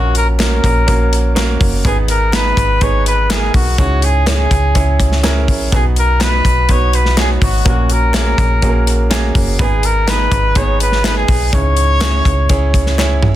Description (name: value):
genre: piano-driven pop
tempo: 124 BPM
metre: 4/4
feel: straight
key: C# dorian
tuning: A4 = 440 Hz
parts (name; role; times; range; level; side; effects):
- warm trumpet; melody; 0.0-12.9 s; F#4 to C#5; -18 LUFS; left 1 dB; none
- warm grand piano; accompaniment; 0.0-13.4 s; G#2 to A#5; -20 LUFS; right 5 dB; none
- slap-like FM bass; bass; 0.0-13.4 s; F#1 to C#2; -15 LUFS; equal; none
- modern studio drum kit; drums; 0.1-13.3 s; hi-hat, kick drum, snare drum, toms; -16 LUFS; equal; none
- group handclap; percussion; 0.4-13.1 s; none; -27 LUFS; left 5 dB; none
room: studio ambience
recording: dense, heavily limited modern master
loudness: -11 LUFS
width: side -13 dB against mid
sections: 0.0-13.4 A section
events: drum fill 13.0-13.4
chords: 0.0 F#/A#; 1.9 G#m; 3.8 C#m; 5.7 B; 7.7 F#/A#; 9.6 G#m; 11.5 C#m